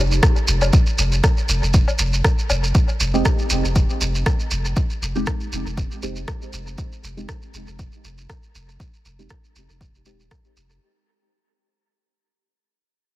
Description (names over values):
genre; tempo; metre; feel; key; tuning
dub techno; 119 BPM; 4/4; swing 54% on 16ths; F minor; A4 = 440 Hz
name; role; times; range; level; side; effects
pure sine sub bass; bass; 0.0-10.8 s; Eb1 to F1; -22 LUFS; equal; sidechain pumping
shekere; percussion; 0.1-10.8 s; none; -26 LUFS; right 2 dB; none
electronic kick drum; drums; 0.2-10.4 s; none; -18 LUFS; equal; none
electronic rim click; drums; 0.2-10.4 s; none; -28 LUFS; equal; dub echo
woodblock; percussion; 0.6-2.6 s; none; -28 LUFS; left 3 dB; overdrive, sidechain pumping on perc, dub echo
deep mellow chord stab; stabs; 3.1-10.2 s; Ab3 to G4; -28 LUFS; right 2 dB; chorus, phaser, sidechain pumping, dub echo
room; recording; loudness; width
digital ambience; heavily compressed radio sound, multiband compression; -17 LUFS; side -16 dB against mid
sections
0.0-10.8 A section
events
fade-out 0.0-10.8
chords
0.0 Fm7